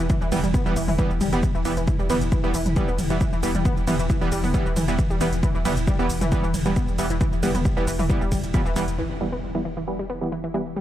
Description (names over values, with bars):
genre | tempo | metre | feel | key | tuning
driving peak-time techno | 135 BPM | 4/4 | straight | E minor | A4 = 439 Hz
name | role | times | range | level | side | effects
analog pluck | riff | 0.0-10.8 s | E3 to B3 | -28 LUFS | equal | chorus, overdrive, sidechain pumping, digital delay
warm sub bass | bass | 0.0-9.0 s | E1 | -28 LUFS | equal | tube saturation, sidechain pumping, low-pass filter
swarming drone | drone | 0.0-10.8 s | E3 to E4 | -32 LUFS | left 1 dB | built-in reverb, sidechain pumping
electronic kick drum | drums | 0.1-8.6 s | none | -23 LUFS | equal | overdrive
techno drum kit | drums | 0.1-9.0 s | hi-hat, ride cymbal, shaker, toms | -31 LUFS | right 1 dB | overdrive, sidechain pumping on hats, sidechain pumping on cymbals, sidechain pumping on perc, sidechain pumping on toms
supersaw stab | stabs | 0.3-10.6 s | E3 to B3 | -28 LUFS | right 2 dB | sidechain pumping, low-pass filter, digital delay
impact | sound effects | 9.0-10.8 s | none | -34 LUFS | equal | none
room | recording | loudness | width
digital ambience | none | -20 LUFS | side -12 dB against mid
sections
0.0-9.0 A section; 9.0-10.8 B section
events
drop 0.0-9.0; impact 9.0-10.8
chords
0.0 Em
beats
| 0.10 0.54 0.99 1.43 | 1.87 2.32 2.76 3.21 | 3.65 4.10 4.54 4.99 | 5.43 5.87 6.32 6.76 | 7.21 7.65 8.10 8.54 | 8.99 9.43 9.87 10.32 | 10.76